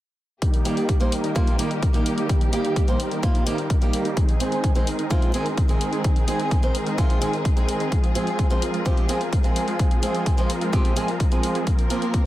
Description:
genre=EDM, festival progressive house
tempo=128 BPM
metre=4/4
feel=straight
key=Eb major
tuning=A4 = 439 Hz
part: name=warm studio string section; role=sustained chords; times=0.4-12.3 s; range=Eb3 to Bb4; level=-33 LUFS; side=left 2 dB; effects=sidechain pumping, low-pass filter
part: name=supersaw chords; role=riff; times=0.4-12.2 s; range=Eb3 to Bb4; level=-27 LUFS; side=equal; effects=sidechain pumping, low-pass filter, tape echo
part: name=electronic hi-hat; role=drums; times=0.4-12.2 s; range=none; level=-34 LUFS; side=left 3 dB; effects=none
part: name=electronic kick drum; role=drums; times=0.4-12.2 s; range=none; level=-20 LUFS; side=equal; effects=none
part: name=fingerpicked swing-style acoustic guitar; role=accompaniment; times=0.6-12.2 s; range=Eb3 to C5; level=-27 LUFS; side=right 2 dB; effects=sidechain pumping, tape echo
room=light reverb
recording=none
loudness=-20 LUFS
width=side -15 dB against mid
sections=0.4-12.3 A section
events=none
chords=0.4 Eb; 4.2 Ab; 7.9 Fm; 11.7 Bbsus2

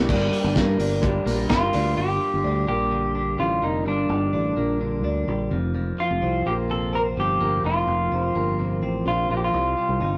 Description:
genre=jangly indie pop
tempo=127 BPM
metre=4/4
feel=straight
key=G minor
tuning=A4 = 438 Hz
part: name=electric guitar through a small old amp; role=accompaniment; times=0.0-2.0 s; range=G2 to D4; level=-33 LUFS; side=equal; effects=none
part: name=twelve-string electric guitar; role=arpeggios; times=0.0-10.2 s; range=F2 to Eb4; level=-30 LUFS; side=equal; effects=none
part: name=fingered electric bass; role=bass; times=0.0-10.2 s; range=F1 to G2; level=-28 LUFS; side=equal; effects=none
part: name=cloth-damped thuddy drum kit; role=drums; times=0.1-1.8 s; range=crash cymbal, hi-hat, kick drum, snare drum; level=-27 LUFS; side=equal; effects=none
part: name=electric guitar through a small old amp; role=melody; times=1.5-10.2 s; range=D4 to Bb4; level=-26 LUFS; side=equal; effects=tape echo
room=wet studio reverb, RT60 0.6 s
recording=rough rehearsal-room recording, warm saturation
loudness=-23 LUFS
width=mono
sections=0.1-2.0 A section; 2.0-10.2 B section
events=none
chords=0.1 Gm; 5.5 Fsus4; 9.5 Cm

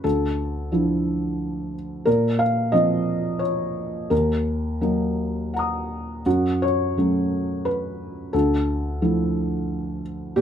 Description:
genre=neoclassical minimalist piano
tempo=87 BPM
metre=3/4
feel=uneven beats, rubato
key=unclear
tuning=A4 = 437 Hz
part: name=felt-muted upright piano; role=solo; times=0.0-10.4 s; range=D2 to D#6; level=-21 LUFS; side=equal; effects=none
room=moderate small room reverb, RT60 0.5 s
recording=band playing live in one room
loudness=-21 LUFS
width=side -9 dB against mid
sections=0.0-10.4 A section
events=none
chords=0.0 Dmadd9; 2.1 A#madd9; 4.1 D#m; 6.3 F#m; 8.3 Dmadd9

